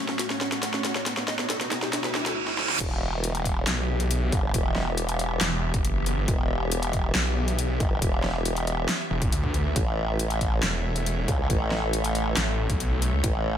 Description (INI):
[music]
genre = heavy wobble dubstep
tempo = 138 BPM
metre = 4/4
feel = half-time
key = E dorian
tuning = A4 = 439 Hz
[part]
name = mellow electric guitar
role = melody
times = 0.0-2.3 s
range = B3 to D#5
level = -34 LUFS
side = equal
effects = dub echo
[part]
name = evolving wavetable pad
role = sustained chords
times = 0.0-13.6 s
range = A2 to E5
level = -33 LUFS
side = equal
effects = chorus, built-in reverb, sidechain pumping
[part]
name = riser and reverse cymbal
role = sound effects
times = 0.0-2.8 s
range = none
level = -31 LUFS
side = right 4 dB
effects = none
[part]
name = airy breathy pad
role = texture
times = 0.0-2.4 s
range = A3 to F#5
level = -35 LUFS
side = left 1 dB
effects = chorus, sidechain pumping
[part]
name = dubstep drum kit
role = drums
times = 0.1-13.3 s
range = crash cymbal, handclaps, hi-hat, snare drum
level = -29 LUFS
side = left 1 dB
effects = high-pass filter on snare, small room ambience, high-pass filter on hats, high-pass filter on cymbals
[part]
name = formant-sweep wobble bass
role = bass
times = 2.8-13.6 s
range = E1 to C#2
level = -26 LUFS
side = equal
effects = chorus, overdrive
[part]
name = electronic kick drum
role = drums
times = 2.8-13.3 s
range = none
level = -27 LUFS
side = equal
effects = small room ambience
[part]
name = snarling distorted saw bass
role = bass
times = 3.7-13.2 s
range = E1 to D2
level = -26 LUFS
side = equal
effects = distortion, overdrive
[sound]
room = digital ambience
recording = none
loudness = -23 LUFS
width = side -9 dB against mid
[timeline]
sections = 0.0-2.8 A section; 2.8-13.6 B section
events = build-up 0.0-2.8; drum fill 0.0-2.4, 2.5-2.8; riser 0.0-2.4; reverse cymbal 1.9-2.8; drop 2.8-13.6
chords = 0.0 F#m/A; 1.1 B; 1.9 D; 2.8 Em; 9.8 A